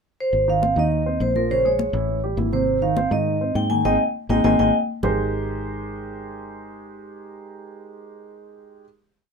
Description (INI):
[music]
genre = Afro-Cuban jazz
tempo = 204 BPM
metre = 4/4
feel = straight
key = Ab major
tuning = A4 = 440 Hz
[part]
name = vibraphone with medium hard mallets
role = melody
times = 0.2-4.7 s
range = Bb4 to Ab5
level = -21 LUFS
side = equal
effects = none
[part]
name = fingered electric bass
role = bass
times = 0.3-8.8 s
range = Ab1 to Ab2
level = -26 LUFS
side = left 1 dB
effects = none
[part]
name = congas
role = percussion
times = 0.3-5.1 s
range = none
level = -26 LUFS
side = left 6 dB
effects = none
[part]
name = dark baby grand piano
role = accompaniment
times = 0.5-8.8 s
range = C3 to C5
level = -27 LUFS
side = right 6 dB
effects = none
[sound]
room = light reverb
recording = minimal, uncompressed stereo recording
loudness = -19 LUFS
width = side -6 dB against mid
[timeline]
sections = 0.0-0.3 pickup bar; 0.3-5.0 A section; 5.0-7.4 final chord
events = band accent 3.9-5.0; drum fill 4.4-5.0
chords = 0.3 Abadd9; 1.5 Bbm7; 2.1 A5; 2.7 Abmaj7; 5.0 Abmaj9